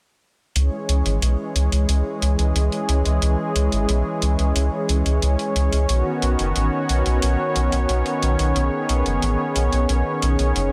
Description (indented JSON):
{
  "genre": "synthwave",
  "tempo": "90 BPM",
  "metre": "4/4",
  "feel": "straight",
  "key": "C# minor",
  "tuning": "A4 = 439 Hz",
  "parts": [
    { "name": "warm analog pad", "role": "sustained chords", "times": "0.6-10.7 s", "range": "D#3 to C#5", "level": "-25 LUFS", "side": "equal", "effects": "chorus, tremolo" },
    { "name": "round analog bass", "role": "bass", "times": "0.6-10.7 s", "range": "F#1 to C#2", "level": "-22 LUFS", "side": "equal", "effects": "none" },
    { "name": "electronic hi-hat", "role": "drums", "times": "0.6-10.7 s", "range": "none", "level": "-30 LUFS", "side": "equal", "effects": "none" }
  ],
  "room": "light reverb",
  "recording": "none",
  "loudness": "-21 LUFS",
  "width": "mono",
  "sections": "0.6-10.7 A section",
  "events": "none",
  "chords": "0.6 C#m; 5.9 Badd9",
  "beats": "| 0.56 1.23 1.89 2.56 | 3.23 3.89 4.56 5.22 | 5.89 6.56 7.22 7.89 | 8.56 9.22 9.89 10.56"
}